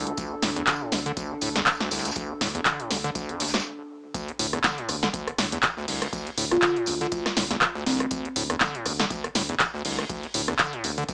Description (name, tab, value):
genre	acid house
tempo	121 BPM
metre	4/4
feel	swing 56% on 16ths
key	D minor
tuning	A4 = 439 Hz
part	warbly tape-like pad	sustained chords	0.0-3.6 s	D3 to A4	-38 LUFS	equal	chorus, built-in reverb, sidechain pumping
part	acid bass, square	riff	0.0-11.1 s	C2 to D3	-34 LUFS	equal	analog delay
part	round analog bass	bass	0.0-11.0 s	D2	-38 LUFS	equal	tube saturation, sidechain pumping
part	punchy analog drum machine	drums	0.1-11.1 s	handclaps, hi-hat, rim click, snare drum	-27 LUFS	equal	none
part	electronic kick drum	drums	0.2-11.1 s	none	-41 LUFS	equal	none
part	warm soul drum kit	drums	0.2-11.1 s	hi-hat, snare drum, tambourine	-38 LUFS	equal	high-pass filter on hats, high-pass filter on snare, high-pass filter on perc, high-pass filter on room
part	folk marimba with soft mallets	melody	6.5-8.3 s	C4 to F4	-30 LUFS	equal	tape echo
room	moderate studio reverb, RT60 0.5 s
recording	small speaker sound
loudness	-26 LUFS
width	mono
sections	0.0-4.1 A section; 4.1-11.1 B section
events	stop 3.6-4.1; drop 4.1-11.1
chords	0.0 D5